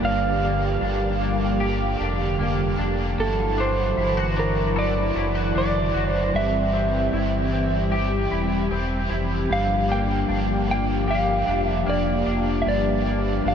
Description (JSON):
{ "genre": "dream pop", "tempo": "76 BPM", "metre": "4/4", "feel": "straight", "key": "G dorian", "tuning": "A4 = 441 Hz", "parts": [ { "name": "electric slide guitar", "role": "melody", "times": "0.0-13.5 s", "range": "A4 to G5", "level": "-25 LUFS", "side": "right 2 dB", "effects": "ping-pong delay" }, { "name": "crunchy overdriven guitar", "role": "accompaniment", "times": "0.0-13.5 s", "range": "G2 to D5", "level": "-32 LUFS", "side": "right 2 dB", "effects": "harmonic tremolo, ensemble chorus" }, { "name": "hollow soft pad", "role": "sustained chords", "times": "0.0-13.5 s", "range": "D3 to G4", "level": "-26 LUFS", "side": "equal", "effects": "chorus" }, { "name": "clean electric guitar", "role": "arpeggios", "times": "0.0-13.5 s", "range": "G2 to A4", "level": "-28 LUFS", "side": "left 5 dB", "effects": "analog chorus, ping-pong delay" }, { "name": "sub bass with octave", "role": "bass", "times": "0.0-13.5 s", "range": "E1 to G1", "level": "-26 LUFS", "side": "equal", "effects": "none" } ], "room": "wet huge ambient reverb, RT60 9.4 s", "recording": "dreamy mix soaked in reverb", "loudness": "-20 LUFS", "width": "side -8 dB against mid", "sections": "0.0-13.5 A section", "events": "none", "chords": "0.0 Gm7; 3.2 Dadd9/G; 6.3 C/G; 9.5 Gm7" }